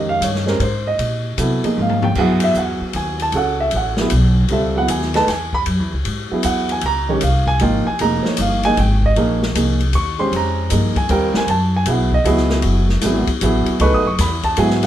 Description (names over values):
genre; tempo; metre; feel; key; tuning
modal jazz; 154 BPM; 3/4; swing 66% on 8ths; unclear; A4 = 440 Hz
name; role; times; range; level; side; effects
warm grand piano; accompaniment; 0.0-14.9 s; Eb3 to Eb6; -18 LUFS; right 2 dB; none
upright bass; bass; 0.0-14.9 s; F1 to C3; -19 LUFS; equal; none
open jazz drum kit; drums; 0.2-14.9 s; crash cymbal, hi-hat, kick drum, ride cymbal, snare drum, toms; -24 LUFS; left 3 dB; none
room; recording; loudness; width
moderate small room reverb, RT60 0.5 s; band playing live in one room; -15 LUFS; side -11 dB against mid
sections
0.0-14.9 A section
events
drum fill 1.8-2.2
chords
0.0 Bbm11; 2.2 Gbm11; 6.8 Bbm11; 11.5 Gbm11